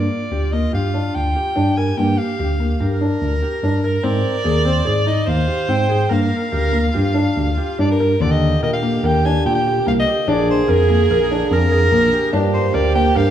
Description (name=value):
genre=contemporary instrumental, chamber music in an uneven meter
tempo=145 BPM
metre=5/4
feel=straight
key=G phrygian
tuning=A4 = 440 Hz
part: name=breathy soprano saxophone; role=melody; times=0.0-13.3 s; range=Bb4 to Ab5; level=-23 LUFS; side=equal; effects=none
part: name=warm viola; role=second line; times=0.0-13.3 s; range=F4 to D5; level=-22 LUFS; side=right 4 dB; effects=none
part: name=felt-muted upright piano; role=arpeggios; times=0.0-13.3 s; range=D3 to Bb4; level=-21 LUFS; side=left 2 dB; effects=none
part: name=tine electric piano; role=bass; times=0.0-13.3 s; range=Bb1 to Bb2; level=-19 LUFS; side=equal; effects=medium stereo tremolo
part: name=pedal harmonium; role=sustained chords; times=8.2-13.3 s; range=D3 to Ab4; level=-26 LUFS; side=equal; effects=none
room=moderate recital hall reverb, RT60 1.7 s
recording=none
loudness=-15 LUFS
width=side -10 dB against mid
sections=0.0-8.2 A section; 8.2-13.3 B section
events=none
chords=0.0 Gm7; 4.0 Ab; 6.1 Gm7; 8.2 Ebmaj7; 10.3 Bb7; 12.3 Gm7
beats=0.31 0.73 1.15 1.56 | 1.98 2.39 2.80 3.21 3.62 | 4.04 4.45 4.86 5.27 5.69 | 6.11 6.52 6.94 7.36 7.79 | 8.21 8.62 9.04 9.45 9.87 | 10.28 10.69 11.10 11.51 11.92 | 12.33 12.74 13.15